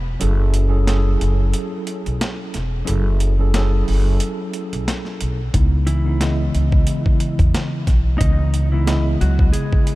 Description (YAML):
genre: hip hop, boom-bap hip-hop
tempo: 90 BPM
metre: 4/4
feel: swing 55% on 16ths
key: F# dorian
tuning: A4 = 440 Hz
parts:
  - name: upright bass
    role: bass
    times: 0.0-9.5 s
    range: E1 to E2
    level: -18 LUFS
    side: equal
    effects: none
  - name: mellow tine electric piano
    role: accompaniment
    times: 0.2-10.0 s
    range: C#3 to D#5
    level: -23 LUFS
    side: equal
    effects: medium stereo tremolo, cassette tape
  - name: dusty soul sampler-style drum kit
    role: drums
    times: 0.2-10.0 s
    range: hi-hat, kick drum, snare drum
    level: -21 LUFS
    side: equal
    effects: overdrive
  - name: mellow electric guitar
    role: melody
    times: 5.9-10.0 s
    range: E3 to D#5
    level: -27 LUFS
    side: equal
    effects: spring reverb, diffuse ambient delay
room: little or no reverb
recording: none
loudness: -16 LUFS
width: side -18 dB against mid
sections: 0.0-10.0 A section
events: break 0.0-5.5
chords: 0.2 F#m7; 5.5 C#m9